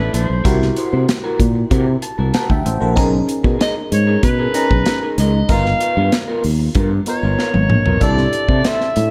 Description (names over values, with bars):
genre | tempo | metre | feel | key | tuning
polished 1980s jazz-funk pop | 95 BPM | 4/4 | straight | unclear | A4 = 438 Hz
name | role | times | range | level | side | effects
warm soprano saxophone | melody | 0.0-9.1 s | B4 to F5 | -24 LUFS | equal | none
FM electric piano | accompaniment | 0.0-9.1 s | B3 to A#5 | -25 LUFS | equal | phaser, lush chorus
electric guitar through a small old amp | riff | 0.0-9.0 s | B3 to C5 | -27 LUFS | equal | subtle chorus
fretless electric bass | bass | 0.0-9.1 s | G1 to C3 | -20 LUFS | equal | none
modern studio drum kit | drums | 0.1-9.1 s | hi-hat, kick drum, snare drum, toms | -21 LUFS | equal | none
room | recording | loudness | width
moderate recital hall reverb, RT60 1.6 s | none | -16 LUFS | mono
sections
0.0-9.1 A section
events
FM electric piano fill 1.7-3.0; drum fill 7.4-8.0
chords
0.5 C7#11; 3.0 Bmaj13; 5.5 G7alt; 8.0 C6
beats
| 0.45 1.08 1.71 2.34 | 2.97 3.60 4.23 4.86 | 5.49 6.12 6.75 7.38 | 8.01 8.64